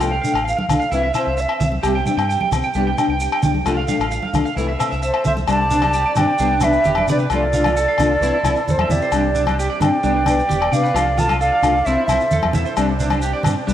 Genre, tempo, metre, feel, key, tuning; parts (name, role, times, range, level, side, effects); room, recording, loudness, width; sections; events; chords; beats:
highlife guitar band; 132 BPM; 4/4; straight; C major; A4 = 443 Hz
breathy mellow silver concert flute; melody; 0.0-1.7, 5.0-12.5 s; C5 to A5; -20 LUFS; right 2 dB; cassette tape
fingerpicked steel-string acoustic guitar; accompaniment; 0.0-13.7 s; E3 to E4; -24 LUFS; left 5 dB; cassette tape
electric guitar at the edge of break-up; arpeggios; 0.0-13.7 s; D4 to G5; -24 LUFS; right 5 dB; analog chorus, cassette tape
deep dub fingered electric bass; bass; 0.0-13.7 s; E1 to C3; -23 LUFS; equal
agogo bells; percussion; 0.0-13.6 s; -25 LUFS; left 8 dB
shekere; percussion; 0.0-13.7 s; -30 LUFS; right 3 dB
congas; percussion; 0.6-13.5 s; -24 LUFS; right 3 dB
breathy trumpet; second line; 5.0-12.5 s; G4 to F5; -29 LUFS; left 3 dB; cassette tape, analog delay
tonewheel organ; sustained chords; 5.5-13.7 s; B3 to A4; -34 LUFS; equal
moderate lush hall reverb, RT60 3.1 s; home recording on cassette; -16 LUFS; side -11 dB against mid
0.0-5.5 A section; 5.5-13.7 B section
0.0 Dm; 0.9 C; 1.8 Csus2; 2.7 G/C; 3.7 Dm; 4.6 Am/C; 5.5 Csus2; 6.4 G/C; 7.3 Dm/C; 8.2 Am/C; 9.1 Csus2; 10.0 G/C; 10.9 Dm/C; 11.9 Am/C; 12.8 Csus2
| 0.00 0.46 0.92 1.37 | 1.83 2.29 2.74 3.20 | 3.66 4.11 4.57 5.03 | 5.48 5.94 6.39 6.85 | 7.31 7.76 8.22 8.67 | 9.13 9.58 10.04 10.49 | 10.95 11.40 11.86 12.31 | 12.77 13.22 13.68